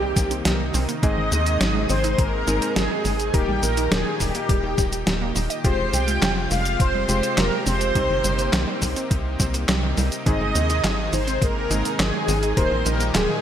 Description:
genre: synthwave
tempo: 104 BPM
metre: 4/4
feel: straight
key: unclear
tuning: A4 = 443 Hz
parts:
  - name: mellow synth brass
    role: melody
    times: 0.0-13.4 s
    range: G4 to G5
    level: -26 LUFS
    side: equal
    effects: chorus, vintage 12-bit sampler grit, digital delay
  - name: string machine, violins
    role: second line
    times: 0.0-13.4 s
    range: G4 to G5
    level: -31 LUFS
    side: equal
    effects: ensemble chorus
  - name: lush unison pad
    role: sustained chords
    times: 0.0-13.4 s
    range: Bb2 to Ab4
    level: -30 LUFS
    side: equal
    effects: chorus, sidechain pumping
  - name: analog pluck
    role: arpeggios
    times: 0.0-13.3 s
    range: Eb3 to Eb5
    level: -32 LUFS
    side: right 5 dB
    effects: chorus, ping-pong delay
  - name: warm electric grand piano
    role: stabs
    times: 0.0-13.4 s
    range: Ab2 to C5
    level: -31 LUFS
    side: left 4 dB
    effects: none
  - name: tight sequencer bass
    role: bass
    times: 0.0-13.3 s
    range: Eb1 to Eb2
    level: -25 LUFS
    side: equal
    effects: sidechain pumping
  - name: detuned 8-bit digital drum machine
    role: drums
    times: 0.2-13.3 s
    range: handclaps, hi-hat, shaker, snare drum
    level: -25 LUFS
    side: equal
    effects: gated reverb
  - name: electronic kick drum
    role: drums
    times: 0.2-12.7 s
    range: none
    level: -23 LUFS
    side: equal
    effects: none
room: light reverb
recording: none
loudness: -19 LUFS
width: side -9 dB against mid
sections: 0.0-13.4 A section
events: none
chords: 0.0 Cm7; 1.0 Ab; 3.3 Eb; 5.6 Fmadd9; 8.0 Cm7; 10.3 Ab; 12.6 Eb

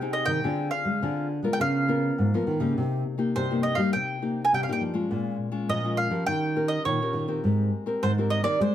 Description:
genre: samba and choro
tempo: 103 BPM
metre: 4/4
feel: straight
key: C minor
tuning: A4 = 438 Hz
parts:
  - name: mandolin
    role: melody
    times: 0.0-8.7 s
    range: C5 to Ab5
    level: -27 LUFS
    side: right 2 dB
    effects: none
  - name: nylon-string guitar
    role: accompaniment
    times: 0.0-8.7 s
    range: G2 to Bb4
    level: -29 LUFS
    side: left 3 dB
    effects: none
  - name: nylon-string guitar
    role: bass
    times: 0.0-8.7 s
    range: Ab2 to C4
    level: -27 LUFS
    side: right 1 dB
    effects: none
room: light reverb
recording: none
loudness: -24 LUFS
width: side -11 dB against mid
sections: 0.0-2.8 A section; 2.8-8.7 B section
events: none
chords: 0.4 Dm7b5; 1.6 Db13; 2.8 Cm7; 5.1 Bbm7; 6.3 Eb7; 7.4 Abmaj9

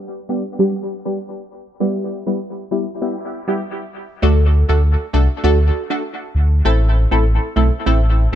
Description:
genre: dancehall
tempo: 99 BPM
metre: 4/4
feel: straight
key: unclear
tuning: A4 = 440 Hz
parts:
  - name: punchy chord stab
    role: accompaniment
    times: 0.3-8.4 s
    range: G3 to A4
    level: -20 LUFS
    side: equal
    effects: chorus, phaser, dub echo
  - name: sub bass with octave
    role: bass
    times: 4.2-8.4 s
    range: A1 to D2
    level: -14 LUFS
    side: equal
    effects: none
room: light reverb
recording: echo-heavy mix, low-pass filter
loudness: -15 LUFS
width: side -11 dB against mid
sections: 0.0-4.2 A section; 4.2-8.4 B section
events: filter sweep 0.0-4.2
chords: 0.0 G; 1.8 Em; 4.2 D; 6.7 Am

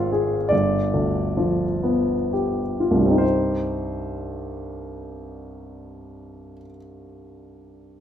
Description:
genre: classical, romantic nocturne for solo piano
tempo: 20-26 BPM (dotted quarters)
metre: 6/8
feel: rubato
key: C minor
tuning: A4 = 441 Hz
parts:
  - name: warm baby grand piano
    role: solo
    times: 0.0-8.0 s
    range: G1 to G5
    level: -22 LUFS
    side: equal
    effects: none
room: moderate large studio reverb, RT60 1.3 s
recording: minimal, uncompressed stereo recording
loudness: -20 LUFS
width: side -10 dB against mid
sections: 0.0-3.2 A section; 3.2-7.9 B section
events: slowing down 0.0-3.2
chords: 0.0 Fm/Ab; 0.5 G7; 3.2 Cm

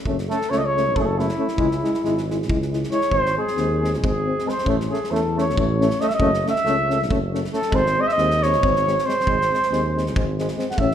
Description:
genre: balkan folk, Balkan brass band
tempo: 274 BPM (eighths)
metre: 7/8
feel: straight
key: G# phrygian dominant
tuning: A4 = 440 Hz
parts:
  - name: bright trombone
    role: accompaniment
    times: 0.1-10.9 s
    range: G#3 to A3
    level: -29 LUFS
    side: right 5 dB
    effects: none
  - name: mellow euphonium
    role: accompaniment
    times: 0.1-10.9 s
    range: B#3 to E4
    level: -26 LUFS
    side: left 5 dB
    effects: none
  - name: dark tuba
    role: bass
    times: 0.1-10.9 s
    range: F#1 to E2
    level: -25 LUFS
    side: equal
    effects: none
  - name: loose indie drum kit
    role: percussion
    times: 0.1-10.9 s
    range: kick drum, snare drum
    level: -28 LUFS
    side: equal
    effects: none
  - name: mellow cornet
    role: melody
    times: 0.3-10.9 s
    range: E4 to F#5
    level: -22 LUFS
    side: equal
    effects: none
room: moderate concert hall reverb, RT60 1.9 s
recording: minimal, uncompressed stereo recording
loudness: -18 LUFS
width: side -9 dB against mid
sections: 0.0-10.9 A section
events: cornet solo 0.0-10.9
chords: 0.1 F#m; 1.6 C#m; 3.1 G#; 4.6 A; 6.2 F#m; 7.7 G#

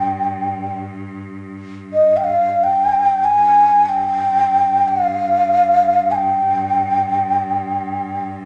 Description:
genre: Arabic maqam ensemble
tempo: free time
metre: none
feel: none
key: unclear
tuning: A4 = 438 Hz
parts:
  - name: breathy mellow low ney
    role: melody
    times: 0.0-8.3 s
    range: Eb5 to Ab5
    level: -16 LUFS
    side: equal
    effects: none
  - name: rich cello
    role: drone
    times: 0.0-8.5 s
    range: G2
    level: -32 LUFS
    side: equal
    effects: none
room: wet large studio reverb, RT60 1.3 s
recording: nothing above 10.6 kHz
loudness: -16 LUFS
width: mono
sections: 0.0-8.5 A section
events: none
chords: none

